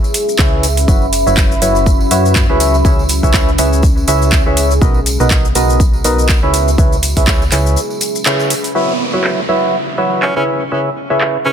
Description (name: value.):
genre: piano house.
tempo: 122 BPM.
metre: 4/4.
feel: swing 56% on 16ths.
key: C# minor.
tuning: A4 = 440 Hz.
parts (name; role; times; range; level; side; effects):
house drum kit; drums; 0.0-11.3 s; handclaps, hi-hat, shaker; -18 LUFS; equal; low-pass filter on hats, studio reverb, low-pass filter on perc, low-pass filter on snare.
tambourine; percussion; 0.0-8.7 s; none; -27 LUFS; right 3 dB; none.
deep dark ambient pad; texture; 0.1-11.5 s; B3 to B5; -21 LUFS; left 1 dB; chorus, built-in reverb, sidechain pumping.
percussive organ stab; riff; 0.4-11.5 s; B2 to E5; -16 LUFS; right 1 dB; wide subtle chorus, sidechain pumping, digital delay.
solid FM bass; bass; 0.4-7.8 s; F#1 to F#2; -16 LUFS; equal; tube saturation, sidechain pumping.
electronic kick drum; drums; 0.4-7.4 s; none; -13 LUFS; equal; studio reverb.
downlifter; sound effects; 8.8-11.5 s; none; -23 LUFS; right 2 dB; none.
bright tenor saxophone; melody; 10.2-11.5 s; C#4; -20 LUFS; right 1 dB; digital delay.
room: light reverb, digital ambience.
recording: dense, heavily limited modern master.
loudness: -10 LUFS.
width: side -8 dB against mid.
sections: 0.0-8.8 A section; 8.8-11.5 B section.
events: break 7.8-8.8; band accent 8.3.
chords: 0.0 C#m7; 0.9 F#7sus4; 2.6 C#m7; 4.8 Bmaj7; 6.5 C#m7.